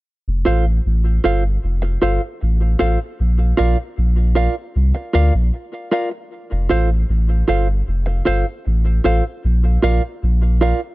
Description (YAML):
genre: roots reggae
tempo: 77 BPM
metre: 4/4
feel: straight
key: F major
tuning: A4 = 441 Hz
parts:
  - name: warm sub bass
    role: bass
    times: 0.3-10.7 s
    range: F1 to D2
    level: -16 LUFS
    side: equal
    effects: none
  - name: mellow electric guitar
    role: accompaniment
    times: 0.5-10.8 s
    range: F4 to F5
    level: -21 LUFS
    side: right 2 dB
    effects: wide subtle chorus, tape echo
room: little or no reverb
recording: none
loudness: -15 LUFS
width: side -19 dB against mid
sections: 0.1-10.9 A section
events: none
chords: 0.1 F; 3.2 Bb; 6.3 F; 9.4 Bb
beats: | 0.07 0.85 1.63 2.41 | 3.19 3.97 4.75 5.53 | 6.31 7.09 7.87 8.66 | 9.44 10.22